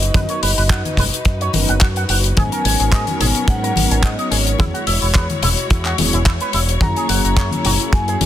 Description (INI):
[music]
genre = nu-disco, nu disco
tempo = 108 BPM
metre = 4/4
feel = swing 53% on 16ths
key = G# minor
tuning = A4 = 444 Hz
[part]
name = vibraphone with medium mallets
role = melody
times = 0.0-8.3 s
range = C#5 to A#5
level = -25 LUFS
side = left 1 dB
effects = tape echo
[part]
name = rich studio string section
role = sustained chords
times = 0.0-8.3 s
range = G#3 to C#5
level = -27 LUFS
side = left 2 dB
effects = sidechain pumping
[part]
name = fingered electric bass with an envelope filter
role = bass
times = 0.0-8.3 s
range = E1 to G#2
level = -20 LUFS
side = equal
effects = none
[part]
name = damped 70s drum kit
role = drums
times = 0.0-8.3 s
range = handclaps, hi-hat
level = -21 LUFS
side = left 4 dB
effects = none
[part]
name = mellow synth brass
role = accompaniment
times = 0.1-8.3 s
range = F#3 to A#4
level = -24 LUFS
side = equal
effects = chorus, sidechain pumping, tape echo
[part]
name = electric guitar with an envelope filter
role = riff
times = 0.1-8.2 s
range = E4 to G#5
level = -25 LUFS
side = right 2 dB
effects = wide subtle chorus, tape echo
[part]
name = kick drum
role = drums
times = 0.1-8.0 s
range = none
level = -16 LUFS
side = equal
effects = none
[part]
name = congas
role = percussion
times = 0.1-8.3 s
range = none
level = -24 LUFS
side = left 2 dB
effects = none
[sound]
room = little or no reverb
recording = dense, heavily limited modern master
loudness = -14 LUFS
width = side -12 dB against mid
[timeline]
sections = 0.0-8.3 A section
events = none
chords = 0.0 Bmaj7/F#; 2.4 G#m11; 4.6 E69; 6.8 F#7